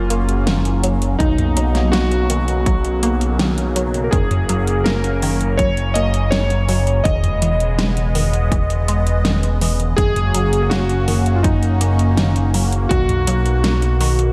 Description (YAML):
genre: synthwave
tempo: 82 BPM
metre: 4/4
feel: straight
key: F# major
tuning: A4 = 440 Hz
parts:
  - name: warm electric grand piano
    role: melody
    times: 0.0-14.3 s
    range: D#4 to D#5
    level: -25 LUFS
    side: equal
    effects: delay
  - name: phased analog pad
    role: sustained chords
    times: 0.0-14.3 s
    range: B2 to D#5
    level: -26 LUFS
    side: equal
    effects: phaser, chorus, sidechain pumping
  - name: fat analog bass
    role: bass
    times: 0.0-14.3 s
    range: E1 to B1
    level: -20 LUFS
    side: equal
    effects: none
  - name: analog pluck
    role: arpeggios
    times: 0.1-14.3 s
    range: D#3 to A#3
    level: -29 LUFS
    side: equal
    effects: chorus, vintage 12-bit sampler grit, delay
  - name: pop drum kit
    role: drums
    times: 0.1-14.3 s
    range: hi-hat, snare drum, toms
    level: -25 LUFS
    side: equal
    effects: overdrive, gated reverb
  - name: electronic kick drum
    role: drums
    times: 1.2-13.1 s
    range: none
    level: -21 LUFS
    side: equal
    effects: overdrive
room: light reverb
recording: none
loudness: -17 LUFS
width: mono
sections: 0.0-14.3 A section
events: none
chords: 0.0 F#6; 1.2 Bmaj7; 4.1 F#6; 7.1 Emaj7; 10.0 F#6; 12.9 Bmaj7